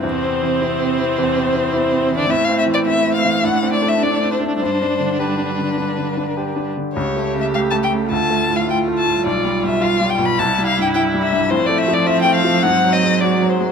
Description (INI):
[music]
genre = quick classical-period movement for piano quartet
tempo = 105 BPM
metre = 4/4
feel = rubato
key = C major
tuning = A4 = 439 Hz
[part]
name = rich cello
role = second line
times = 0.0-13.7 s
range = C3 to A3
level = -23 LUFS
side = right 8 dB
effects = none
[part]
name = bright grand piano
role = accompaniment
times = 0.0-13.7 s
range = B1 to G4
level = -20 LUFS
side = left 2 dB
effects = none
[part]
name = clear viola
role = accompaniment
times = 0.0-13.7 s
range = C4 to G4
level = -23 LUFS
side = right 5 dB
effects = none
[part]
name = warm violin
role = melody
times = 0.1-13.7 s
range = B4 to B5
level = -19 LUFS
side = left 5 dB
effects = none
[sound]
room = light reverb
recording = none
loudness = -15 LUFS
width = side -6 dB against mid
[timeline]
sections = 0.0-13.7 A section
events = none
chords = 0.0 C/E; 2.3 Am; 3.4 D5/A; 4.6 G; 7.0 A7/C#; 8.1 Dm; 9.3 G7/B; 10.4 C; 11.5 F/A; 12.6 Ab7